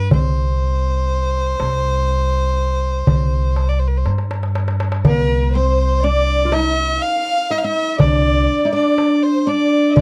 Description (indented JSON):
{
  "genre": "Arabic maqam ensemble",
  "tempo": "122 BPM (eighths)",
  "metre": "10/8",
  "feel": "straight",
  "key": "C maqam rast",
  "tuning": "A4 = 440 Hz",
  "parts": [
    { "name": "clear violin", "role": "melody", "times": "0.0-10.0 s", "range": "Bb4+47c to F5", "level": "-23 LUFS", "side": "equal", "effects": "none" },
    { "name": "oud", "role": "second line", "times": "0.0-10.0 s", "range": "Bb3+50c to F4", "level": "-22 LUFS", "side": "equal", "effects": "none" },
    { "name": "upright bass", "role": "bass", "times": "0.0-10.0 s", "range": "C2 to G2", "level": "-20 LUFS", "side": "equal", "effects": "none" },
    { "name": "darbuka", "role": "percussion", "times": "0.1-10.0 s", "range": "none", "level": "-21 LUFS", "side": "equal", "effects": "none" },
    { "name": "rich studio violin section", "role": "second line", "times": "5.0-10.0 s", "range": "Bb4+50c to F5", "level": "-27 LUFS", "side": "equal", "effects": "none" }
  ],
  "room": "little or no reverb",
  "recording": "dry, close 1970s-style studio recording",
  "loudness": "-17 LUFS",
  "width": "mono",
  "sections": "0.0-5.0 A section; 5.0-10.0 B section",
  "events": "drum fill 4.1-5.0",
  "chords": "none",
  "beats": "| 0.12 0.61 1.10 1.60 2.09 2.58 3.07 3.57 4.06 4.55 | 5.04 5.53 6.03 6.52 7.01 7.50 8.00 8.49 8.98 9.47 | 9.96"
}